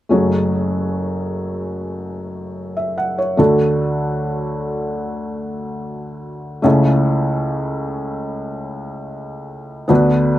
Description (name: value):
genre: pop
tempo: 74 BPM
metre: 4/4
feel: straight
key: F# minor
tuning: A4 = 440 Hz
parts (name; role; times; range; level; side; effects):
- felt-muted upright piano; accompaniment; 0.1-10.4 s; F#1 to F#5; -17 LUFS; equal; none
room: light reverb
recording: recorded outdoors, with no room sound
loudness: -17 LUFS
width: side -14 dB against mid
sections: 0.1-10.4 A section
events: none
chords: 0.1 F#madd9; 3.4 D; 6.6 A/C#